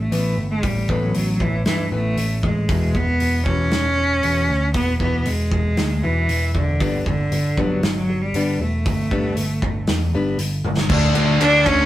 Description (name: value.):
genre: quiet-loud alternative rock.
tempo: 117 BPM.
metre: 4/4.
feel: straight.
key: unclear.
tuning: A4 = 442 Hz.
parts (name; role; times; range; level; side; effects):
clear cello; melody; 0.0-11.9 s; D3 to D4; -21 LUFS; equal; none.
fingerpicked plugged-in steel-string acoustic guitar; arpeggios; 0.0-10.9 s; E2 to D4; -26 LUFS; left 2 dB; none.
picked electric bass; bass; 0.0-11.9 s; E1 to G2; -22 LUFS; equal; none.
loose indie drum kit; drums; 0.1-11.8 s; crash cymbal, hi-hat, kick drum, ride cymbal, snare drum, toms; -24 LUFS; equal; none.
fuzz guitar; riff; 10.9-11.9 s; D3 to D4; -22 LUFS; left 4 dB; distortion.
scooped high-gain guitar; riff; 10.9-11.9 s; D3 to D4; -26 LUFS; equal; distortion.
thick fuzz guitar; riff; 10.9-11.9 s; D3 to D4; -25 LUFS; right 7 dB; none.
room: light reverb.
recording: rough rehearsal-room recording.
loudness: -17 LUFS.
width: side -14 dB against mid.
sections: 0.0-10.9 A section.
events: drum fill 10.6.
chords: 0.0 Asus2; 2.7 E; 6.8 Gadd9; 10.9 D5.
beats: 0.12 | 0.63 1.15 1.66 2.18 | 2.69 3.21 3.72 4.24 | 4.75 5.27 5.78 6.29 | 6.81 7.32 7.83 8.35 | 8.86 9.37 9.88 10.39 | 10.90 11.41.